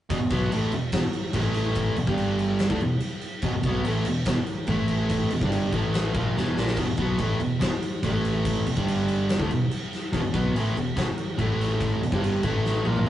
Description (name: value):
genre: hard rock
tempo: 144 BPM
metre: 4/4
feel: straight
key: unclear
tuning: A4 = 440 Hz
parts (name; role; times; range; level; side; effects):
- overdriven electric guitar; riff; 0.1-13.1 s; E2 to B3; -25 LUFS; equal; none
- picked electric bass; bass; 0.1-13.1 s; E1 to D2; -29 LUFS; equal; none
- big rock drum kit; drums; 0.1-13.1 s; crash cymbal, kick drum, snare drum, toms; -28 LUFS; left 1 dB; none
room: moderate small room reverb, RT60 0.5 s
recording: rough rehearsal-room recording, warm saturation, nothing above 10.7 kHz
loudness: -23 LUFS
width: side -12 dB against mid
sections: 0.1-13.1 A section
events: drum fill 6.4-6.8, 12.6-13.1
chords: 0.1 E5; 1.3 A5; 2.0 E5; 2.1 G5; 2.7 E5; 4.7 A5; 5.3 E5; 5.7 A5; 6.1 E5; 8.0 A5; 8.7 E5; 8.8 G5; 9.4 E5; 11.4 A5; 12.0 E5; 12.4 A5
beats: | 0.10 0.51 0.93 1.34 | 1.76 2.18 2.60 3.01 | 3.43 3.85 4.26 4.68 | 5.10 5.52 5.93 6.35 | 6.77 7.19 7.61 8.03 | 8.45 8.86 9.28 9.70 | 10.12 10.54 10.96 11.38 | 11.80 12.22 12.64 13.06